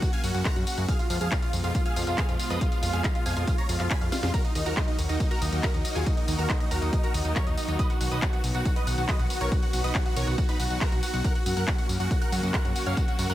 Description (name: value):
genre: uplifting trance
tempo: 139 BPM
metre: 4/4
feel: straight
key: Eb minor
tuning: A4 = 440 Hz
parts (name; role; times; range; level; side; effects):
- big supersaw lead; melody; 0.0-13.3 s; Eb4 to Cb6; -33 LUFS; right 1 dB; phaser, sidechain pumping, tape echo
- wide unison pluck; second line; 0.0-13.3 s; Eb5 to Cb7; -37 LUFS; right 1 dB; cassette tape, sidechain pumping, tape echo
- lush unison pad; sustained chords; 0.0-13.3 s; Cb3 to Gb4; -34 LUFS; equal; chorus, sidechain pumping
- electronic kick drum; drums; 0.0-13.1 s; none; -27 LUFS; equal; none
- techno drum kit; drums; 0.0-13.3 s; handclaps, hi-hat, snare drum, tambourine; -34 LUFS; left 1 dB; none
- fat analog bass; bass; 0.2-13.3 s; B1 to Gb2; -29 LUFS; equal; sidechain pumping
room: little or no reverb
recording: none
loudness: -24 LUFS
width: side -14 dB against mid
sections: 0.0-13.3 A section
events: drum fill 4.1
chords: 0.0 Gb; 0.9 Fdim; 4.3 Ebm; 7.8 B; 11.2 Gb